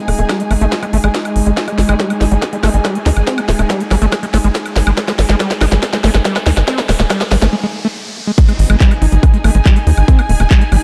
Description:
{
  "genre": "psychedelic trance",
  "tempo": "141 BPM",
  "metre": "4/4",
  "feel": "straight",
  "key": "unclear",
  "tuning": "A4 = 440 Hz",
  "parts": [
    { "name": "overtone-sweeping drone", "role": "sustained chords", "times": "0.0-7.5 s", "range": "Ab3", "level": "-25 LUFS", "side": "equal", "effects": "chorus, built-in reverb, sidechain pumping" },
    { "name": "riser and downlifter", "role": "sound effects", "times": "0.0-10.8 s", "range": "none", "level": "-32 LUFS", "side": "equal", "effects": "none" },
    { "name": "warm symphonic string section", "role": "texture", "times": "0.0-10.8 s", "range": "Eb4 to Ab5", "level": "-27 LUFS", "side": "equal", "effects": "sidechain pumping" },
    { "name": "overdriven acid bass", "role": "riff", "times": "0.1-10.8 s", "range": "G3 to Eb4", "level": "-22 LUFS", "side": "equal", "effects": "distortion, sidechain pumping, dub echo" },
    { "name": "tight sequencer bass", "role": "bass", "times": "0.1-10.8 s", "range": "Eb1 to Eb2", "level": "-15 LUFS", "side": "equal", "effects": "none" },
    { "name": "drum and bass drum kit", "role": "drums", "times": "0.1-10.8 s", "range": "crash cymbal, handclaps, hi-hat, snare drum, woodblock", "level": "-22 LUFS", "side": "equal", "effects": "small room ambience" },
    { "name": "electronic kick drum", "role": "drums", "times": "0.3-10.6 s", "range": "none", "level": "-13 LUFS", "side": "equal", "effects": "high-pass filter on kick, small room ambience" }
  ],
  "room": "light reverb",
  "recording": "dark, warm production",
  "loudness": "-14 LUFS",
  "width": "mono",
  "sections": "0.0-8.4 A section; 8.4-10.8 B section",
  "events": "build-up 0.0-8.4; drum fill 0.0-7.5; break 7.5-8.4; drop 8.4-10.8",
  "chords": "0.0 Ab5",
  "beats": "0.29 0.72 1.15 | 1.57 2.00 2.42 2.85 | 3.27 3.70 4.12 4.55 | 4.97 5.40 5.83 6.25 | 6.68 7.10 7.53 7.95 | 8.38 8.80 9.23 9.66 | 10.08 10.51"
}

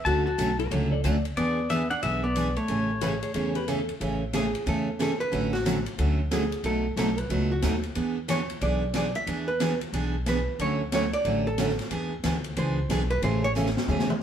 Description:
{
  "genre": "country, western swing",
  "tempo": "182 BPM",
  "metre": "4/4",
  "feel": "swing 63% on 8ths",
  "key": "A major",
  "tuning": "A4 = 439 Hz",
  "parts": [
    { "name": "pedal steel guitar", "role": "melody", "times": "0.0-3.6 s", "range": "C#5 to A5", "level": "-30 LUFS", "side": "left 3 dB", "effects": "none" },
    { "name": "upright bass", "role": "bass", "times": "0.0-14.2 s", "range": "A1 to E2", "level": "-30 LUFS", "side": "equal", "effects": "none" },
    { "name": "archtop guitar, miked and amplified", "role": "second line", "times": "0.1-13.5 s", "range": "A3 to E5", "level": "-30 LUFS", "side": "right 1 dB", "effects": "none" },
    { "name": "picked steel-string acoustic guitar", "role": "accompaniment", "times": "0.1-14.1 s", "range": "B2 to G#4", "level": "-28 LUFS", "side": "right 1 dB", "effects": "none" },
    { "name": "swinging big-band drum kit", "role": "drums", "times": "0.1-14.2 s", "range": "hi-hat, ride cymbal, snare drum, toms", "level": "-35 LUFS", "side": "left 1 dB", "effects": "none" },
    { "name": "clean lap steel guitar", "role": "second line", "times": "0.6-3.9 s", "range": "F#4 to D5", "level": "-32 LUFS", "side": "left 3 dB", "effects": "none" }
  ],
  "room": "moderate studio reverb, RT60 0.7 s",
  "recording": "band playing live in one room",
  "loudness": "-24 LUFS",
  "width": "side -9 dB against mid",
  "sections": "0.0-4.0 A section; 4.0-14.2 B section",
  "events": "hollow-body jazz guitar solo 4.0-14.2; drum fill 13.6-14.2",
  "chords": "0.1 Dmaj7; 1.4 E7; 2.7 Amaj7; 5.3 Dmaj7/A; 6.6 B7; 8.0 E7; 10.6 Dmaj7; 11.9 E7; 13.2 Amaj7",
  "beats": "| 0.05 0.38 0.71 1.04 | 1.37 1.70 2.03 2.36 | 2.69 3.01 3.34 3.67 | 4.00 4.33 4.66 4.99 | 5.32 5.65 5.98 6.31 | 6.64 6.97 7.29 7.62 | 7.95 8.28 8.61 8.94 | 9.27 9.60 9.93 10.26 | 10.59 10.92 11.25 11.58 | 11.91 12.24 12.57 12.90 | 13.22 13.55 13.88 14.21"
}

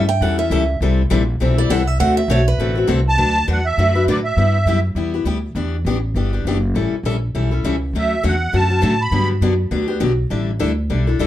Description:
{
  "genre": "acoustic string swing (jazz manouche)",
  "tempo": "202 BPM",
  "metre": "4/4",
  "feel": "swing 58% on 8ths",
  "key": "D major from 3.2 s",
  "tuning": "A4 = 440 Hz",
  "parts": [
    { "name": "picked steel-string acoustic guitar", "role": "second line", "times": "0.0-2.9 s", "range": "B4 to G5", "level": "-22 LUFS", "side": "right 4 dB", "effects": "none" },
    { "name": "picked steel-string acoustic guitar", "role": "accompaniment", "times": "0.0-11.3 s", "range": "C3 to B4", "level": "-20 LUFS", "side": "left 4 dB", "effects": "none" },
    { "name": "upright bass", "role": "bass", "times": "0.0-11.3 s", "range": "F#1 to A2", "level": "-18 LUFS", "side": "equal", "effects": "none" },
    { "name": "musette accordion", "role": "melody", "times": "3.1-4.8, 8.0-9.3 s", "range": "D5 to B5", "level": "-19 LUFS", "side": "right 2 dB", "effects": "plate reverb" }
  ],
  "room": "light reverb",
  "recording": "dark, warm production",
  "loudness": "-16 LUFS",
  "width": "side -13 dB against mid",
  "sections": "0.0-3.2 A section; 3.2-11.3 B section",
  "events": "steel-string acoustic guitar solo 0.0-3.2",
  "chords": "0.0 A7; 0.8 C6; 2.0 D7; 3.2 D6; 4.4 G6; 5.6 Em9; 6.8 A7; 7.9 Dmaj7; 9.1 Gmaj7; 10.3 A7sus4",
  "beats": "0.23 0.53 | 0.82 1.12 1.42 1.71 | 2.01 2.30 2.60 2.90 | 3.19 3.49 3.79 4.08 | 4.38 4.67 4.97 5.27 | 5.57 5.86 6.16 6.46 | 6.75 7.05 7.34 7.64 | 7.94 8.24 8.53 8.83 | 9.13 9.42 9.72 10.02 | 10.31 10.61 10.91 11.21"
}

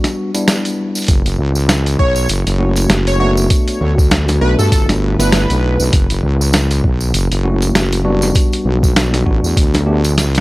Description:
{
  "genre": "glitch hop",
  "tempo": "99 BPM",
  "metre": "4/4",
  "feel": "swing 57% on 16ths",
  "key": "F# phrygian",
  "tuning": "A4 = 440 Hz",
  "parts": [
    { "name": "tine electric piano", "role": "stabs", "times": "0.0-10.0 s", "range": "G3 to G4", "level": "-19 LUFS", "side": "left 1 dB", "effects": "sidechain pumping, tape echo" },
    { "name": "boom bap sampler-style drum kit", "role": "drums", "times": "0.0-10.4 s", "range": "hi-hat, snare drum", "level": "-17 LUFS", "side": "equal", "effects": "none" },
    { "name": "tambourine", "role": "percussion", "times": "0.1-10.4 s", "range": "none", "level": "-26 LUFS", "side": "right 2 dB", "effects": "none" },
    { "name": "wobble bass", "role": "bass", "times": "1.1-10.4 s", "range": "F#1 to G2", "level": "-14 LUFS", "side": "equal", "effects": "chorus, tube saturation" },
    { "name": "electronic kick drum", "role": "drums", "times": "1.1-9.7 s", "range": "none", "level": "-14 LUFS", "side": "equal", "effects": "none" },
    { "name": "plucky unison lead", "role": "melody", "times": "2.0-5.8 s", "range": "A4 to C#5", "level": "-21 LUFS", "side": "right 1 dB", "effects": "wide subtle chorus, tape echo" }
  ],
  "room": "little or no reverb",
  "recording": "dry, gritty hardware recording",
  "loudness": "-12 LUFS",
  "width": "side -20 dB against mid",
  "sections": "0.0-10.4 A section",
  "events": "drum fill 10.2",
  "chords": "0.0 Em7; 1.1 F#m7; 3.5 Gmaj7; 5.9 F#m7; 8.4 Em7 (rootless); 9.6 Gmaj7",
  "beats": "0.47 | 1.08 1.69 2.29 2.90 | 3.50 4.11 4.72 5.32 | 5.93 6.54 7.14 7.75 | 8.35 8.96 9.57 10.17"
}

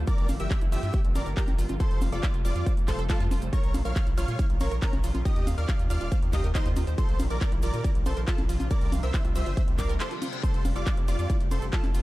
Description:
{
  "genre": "uplifting trance",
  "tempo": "139 BPM",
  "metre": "4/4",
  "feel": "straight",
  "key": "F major",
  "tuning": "A4 = 436 Hz",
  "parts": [
    { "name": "shimmering ambient pad", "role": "sustained chords", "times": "0.0-12.0 s", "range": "Bb2 to G4", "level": "-39 LUFS", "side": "left 1 dB", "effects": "chorus, built-in reverb, sidechain pumping" },
    { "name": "analog pluck", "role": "arpeggios", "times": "0.0-12.0 s", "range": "Eb4 to F5", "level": "-40 LUFS", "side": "right 4 dB", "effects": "chorus, sidechain pumping, tape echo" },
    { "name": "gritty driven synth bass", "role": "bass", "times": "0.0-12.0 s", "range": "Eb1 to Bb2", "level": "-29 LUFS", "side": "equal", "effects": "sidechain pumping" },
    { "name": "downlifter and reverse cymbal", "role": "sound effects", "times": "0.0-0.1, 10.0-10.4 s", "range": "none", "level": "-42 LUFS", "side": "left 8 dB", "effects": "none" },
    { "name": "big supersaw lead", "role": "melody", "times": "0.1-11.9 s", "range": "Db4 to F5", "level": "-36 LUFS", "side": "equal", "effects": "sidechain pumping, tape echo" },
    { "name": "plucky unison lead", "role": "second line", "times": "0.1-11.9 s", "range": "A5 to F6", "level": "-42 LUFS", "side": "equal", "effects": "sidechain pumping, tape echo" },
    { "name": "big-room dance drum kit", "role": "drums", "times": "0.1-12.0 s", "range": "congas, handclaps, hi-hat, ride cymbal", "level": "-37 LUFS", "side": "left 1 dB", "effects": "none" },
    { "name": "electronic kick drum", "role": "drums", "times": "0.1-11.8 s", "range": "none", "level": "-26 LUFS", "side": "equal", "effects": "none" },
    { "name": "cabasa", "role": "percussion", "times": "0.1-12.0 s", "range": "none", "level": "-50 LUFS", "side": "left 2 dB", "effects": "none" }
  ],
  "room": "digital ambience",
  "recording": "dark, warm production",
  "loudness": "-24 LUFS",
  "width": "side -18 dB against mid",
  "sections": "0.0-12.0 A section",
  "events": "reverse cymbal 10.0-10.4; break 10.0-10.4",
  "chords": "0.1 Gm7; 1.8 Fadd9; 3.5 Bbm; 5.3 Eb; 7.0 Bbadd9; 8.7 Csus2; 10.4 Fadd9",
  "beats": "| 0.07 0.51 0.94 1.37 | 1.80 2.23 2.66 3.10 | 3.53 3.96 4.39 4.82 | 5.25 5.69 6.12 6.55 | 6.98 7.41 7.84 8.28 | 8.71 9.14 9.57 10.00 | 10.43 10.87 11.30 11.73"
}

